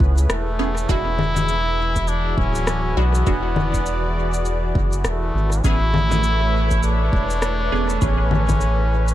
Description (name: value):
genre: ambient dub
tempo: 101 BPM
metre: 4/4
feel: swing 60% on 16ths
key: E mixolydian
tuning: A4 = 440 Hz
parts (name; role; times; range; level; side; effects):
- trombone with straight mute; melody; 0.0-9.1 s; A3 to E4; -24 LUFS; equal; dub echo
- warm analog pad; sustained chords; 0.0-9.1 s; E3 to D5; -27 LUFS; equal; chorus
- round analog bass; bass; 0.0-9.1 s; D1 to C#2; -20 LUFS; equal; none
- electronic kick drum; drums; 0.0-8.6 s; none; -22 LUFS; equal; overdrive
- electronic cabasa, rim click and congas; drums; 0.2-9.1 s; none; -27 LUFS; left 3 dB; dub echo
- filtered dub chord stab; stabs; 0.6-8.2 s; G#3 to G#4; -30 LUFS; right 3 dB; phaser, dub echo
room: digital ambience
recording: none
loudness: -17 LUFS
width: side -13 dB against mid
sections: 0.0-9.1 A section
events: none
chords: 0.0 Amaj7; 0.9 E7; 5.6 Amaj7